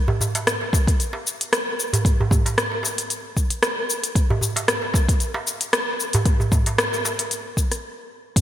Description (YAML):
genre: downtempo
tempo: 114 BPM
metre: 4/4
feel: swing 55% on 16ths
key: none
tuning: none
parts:
  - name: darbuka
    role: percussion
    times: 0.1-7.3 s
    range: none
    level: -25 LUFS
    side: right 2 dB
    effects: none
  - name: deep house drum kit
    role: drums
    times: 0.2-8.4 s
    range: cabasa, hi-hat, rim click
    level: -23 LUFS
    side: left 1 dB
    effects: small room ambience
  - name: electronic kick drum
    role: drums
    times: 0.7-8.4 s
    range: none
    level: -19 LUFS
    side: equal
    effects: small room ambience
room: moderate lush hall reverb, RT60 2.5 s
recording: bright 1980s-style digital production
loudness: -19 LUFS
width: side -12 dB against mid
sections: 0.0-8.4 A section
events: stop 7.8-8.4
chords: none